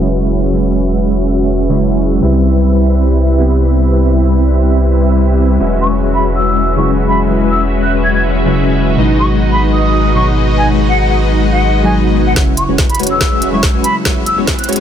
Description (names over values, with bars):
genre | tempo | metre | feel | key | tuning
future bass | 142 BPM | 4/4 | swing 53% on 16ths, half-time | E major | A4 = 440 Hz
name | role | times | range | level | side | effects
glassy digital keys | accompaniment | 0.0-14.8 s | B2 to B4 | -18 LUFS | right 1 dB | chorus, sidechain pumping, digital delay
big bright polysynth | riff | 0.0-14.8 s | G3 to G#5 | -15 LUFS | left 1 dB | chorus, sidechain pumping
saturated sub bass | bass | 0.0-14.8 s | E1 to C2 | -14 LUFS | equal | sidechain pumping
silver concert flute | melody | 5.8-14.7 s | F#5 to G#6 | -17 LUFS | left 1 dB | sidechain pumping, low-pass filter, ping-pong delay
electronic kick drum | drums | 12.4-14.6 s | none | -15 LUFS | equal | none
trap drum kit | drums | 12.4-14.8 s | hi-hat, snare drum | -18 LUFS | equal | high-pass filter on cymbals, high-pass filter on snare, high-pass filter on hats
riser | sound effects | 13.3-14.8 s | none | -34 LUFS | left 1 dB | none
room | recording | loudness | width
light reverb | low-pass filter | -10 LUFS | side -9 dB against mid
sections
0.0-12.4 A section; 12.4-14.8 B section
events
filter sweep on analog polysynth 0.0-12.4; filter sweep 0.0-12.4; build-up 12.4-14.8; drum fill 12.4-14.8; filter sweep on flute 12.4-14.8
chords
0.0 E69; 2.2 Cmaj7; 5.6 E69; 9.0 G#m7; 12.4 E69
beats
0.11 | 0.53 0.96 1.38 1.80 | 2.22 2.65 3.07 3.49 | 3.91 4.34 4.76 5.18 | 5.60 6.03 6.45 6.87 | 7.29 7.72 8.14 8.56 | 8.98 9.41 9.83 10.25 | 10.67 11.10 11.52 11.94 | 12.36 12.79 13.21 13.63 | 14.05 14.48